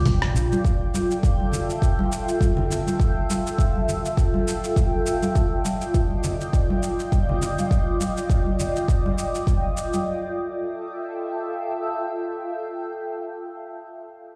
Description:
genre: sunset chillout.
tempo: 102 BPM.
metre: 4/4.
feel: swing 56% on 16ths.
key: F major.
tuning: A4 = 440 Hz.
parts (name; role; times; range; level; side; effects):
shimmering ambient pad; sustained chords; 0.0-13.2 s; F4 to G5; -29 LUFS; equal; chorus, built-in reverb, phaser.
mellow fretless electric bass; bass; 0.0-0.5 s; Bb1; -24 LUFS; equal; analog chorus.
dusty soul sampler-style drum kit; drums; 0.1-10.0 s; cabasa, congas, hi-hat, rim click; -34 LUFS; equal; none.
electronic kick drum; drums; 0.1-9.6 s; none; -23 LUFS; equal; overdrive.
congas; percussion; 0.1-10.0 s; none; -31 LUFS; equal; none.
room: moderate plate reverb, RT60 2.2 s.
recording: played on a big sound system in a bare room, large studio reverb.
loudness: -24 LUFS.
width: mono.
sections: 0.0-10.1 A section; 10.1-12.4 B section.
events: none.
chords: 0.0 Ebmaj9 (rootless); 0.6 Fmaj9; 5.1 Ebmaj9; 10.1 Fmaj9.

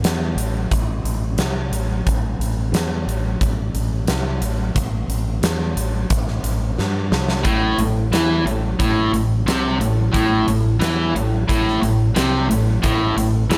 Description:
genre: hard rock.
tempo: 89 BPM.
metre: 4/4.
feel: straight.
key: A minor.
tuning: A4 = 439 Hz.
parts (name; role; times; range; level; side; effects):
mellow fretless electric bass; bass; 0.0-13.6 s; A1 to G2; -25 LUFS; equal; none.
huge arena drum kit; drums; 0.0-13.6 s; hi-hat, kick drum, snare drum; -25 LUFS; equal; none.
biting overdriven guitar; riff; 7.4-13.6 s; A2 to E3; -20 LUFS; equal; none.
room: light reverb, small room ambience.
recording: none.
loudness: -20 LUFS.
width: mono.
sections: 0.0-13.6 A section.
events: drum fill 6.8-7.5.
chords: 0.0 Am.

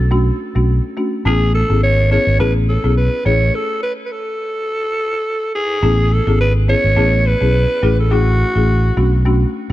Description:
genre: afrobeats.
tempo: 105 BPM.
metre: 4/4.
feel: swing 55% on 16ths.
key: A major.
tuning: A4 = 440 Hz.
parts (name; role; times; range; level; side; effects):
breathy alto saxophone; melody; 0.0-9.3 s; F#4 to C#5; -19 LUFS; right 1 dB; ping-pong delay.
folk marimba with soft mallets; accompaniment; 0.0-9.7 s; A3 to G#4; -20 LUFS; left 3 dB; none.
fingered electric bass; bass; 0.0-9.7 s; G#1 to B1; -14 LUFS; equal; none.
room: small room ambience.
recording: dark, warm production.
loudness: -13 LUFS.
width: side -15 dB against mid.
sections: 0.0-5.8 A section; 5.8-9.7 B section.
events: stop 3.5-5.8.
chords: 0.0 Bm7; 1.3 Amaj7; 4.4 N.C.; 5.8 Amaj7; 7.8 F#m7/A; 9.0 Bm7.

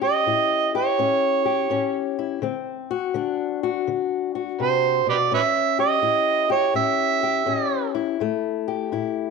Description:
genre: acoustic country blues, solo or duo.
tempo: 83 BPM.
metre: 4/4.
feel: swing 66% on 8ths.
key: A mixolydian.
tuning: A4 = 439 Hz.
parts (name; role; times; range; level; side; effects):
overdriven harmonica; melody; 0.0-7.9 s; G4 to E5; -20 LUFS; right 8 dB; none.
fingerpicked old ladder-braced acoustic guitar; accompaniment; 0.0-9.3 s; A2 to G4; -24 LUFS; left 11 dB; none.
room: wet echo chamber reverb, RT60 1.3 s, small room ambience.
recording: 1960s-style stereo with parts hard left and right.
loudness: -20 LUFS.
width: side -4 dB against mid.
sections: 0.0-9.3 A section.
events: none.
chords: 0.0 A7; 2.4 D7; 5.3 A7.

